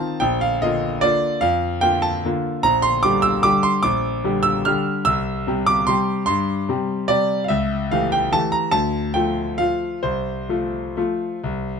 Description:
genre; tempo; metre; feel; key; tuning
classical, piano waltz; 125-157 BPM; 3/4; rubato; F major; A4 = 440 Hz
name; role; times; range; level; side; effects
clear grand piano; solo; 0.0-11.8 s; Bb1 to F6; -18 LUFS; equal; none
room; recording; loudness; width
light reverb; close, detailed microphones; -18 LUFS; side -6 dB against mid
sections
0.0-11.8 A section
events
none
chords
0.2 Bb; 2.6 Gm/Bb; 5.1 C; 7.5 A7/C#; 8.7 Dm; 10.0 F/C

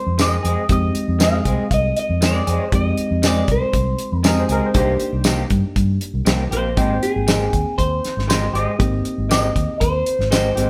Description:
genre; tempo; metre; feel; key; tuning
straight-eighth soul blues; 118 BPM; 4/4; straight; unclear; A4 = 436 Hz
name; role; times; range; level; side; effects
electric guitar through a small old amp; melody; 0.0-10.7 s; Ab4 to F5; -25 LUFS; equal; phaser
reed electric piano; accompaniment; 0.0-10.7 s; Ab3 to G5; -28 LUFS; equal; none
vintage muted fingered electric bass; bass; 0.1-10.7 s; Ab1 to G2; -24 LUFS; equal; none
electric guitar through a small old amp; stabs; 0.2-10.7 s; Eb3 to Ab4; -27 LUFS; equal; none
damped 70s drum kit; drums; 0.2-10.7 s; hi-hat, kick drum, snare drum, tambourine; -23 LUFS; equal; none
clear upright piano; second line; 4.3-5.3 s; G4 to C5; -26 LUFS; equal; none
room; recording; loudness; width
moderate stone room reverb, RT60 1.1 s; band playing live in one room; -19 LUFS; mono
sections
0.0-10.7 A section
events
none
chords
0.0 Fm7; 4.8 Cm7; 6.8 Abmaj7

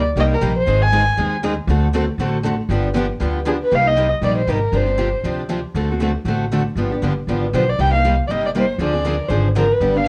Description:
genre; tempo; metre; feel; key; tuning
acoustic string swing (jazz manouche); 237 BPM; 4/4; swing 55% on 8ths; C minor; A4 = 439 Hz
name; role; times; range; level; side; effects
dark violin; melody; 0.0-1.3, 3.5-5.3, 7.5-10.1 s; Ab4 to Ab5; -21 LUFS; equal; none
upright bass; bass; 0.0-10.1 s; G1 to Eb2; -23 LUFS; equal; none
picked steel-string acoustic guitar; accompaniment; 0.2-10.1 s; C3 to A4; -25 LUFS; equal; none
picked steel-string acoustic guitar; accompaniment; 0.2-10.1 s; C3 to A4; -27 LUFS; equal; none
picked plugged-in steel-string acoustic guitar; second line; 9.1-9.5 s; Bb4 to C5; -32 LUFS; equal; none
room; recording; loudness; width
moderate club reverb, RT60 0.6 s; worn, warbling old tape, cassette tape, warbly pitch drift, faint mains hum; -19 LUFS; mono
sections
0.0-3.7 A section; 3.7-10.1 B section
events
none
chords
0.0 Cm7; 0.7 Ab; 1.7 D7; 2.7 G7; 3.7 Cm7; 4.7 G7sus4; 5.7 D7; 6.8 G7; 7.8 Cm7; 8.8 Dm7b5

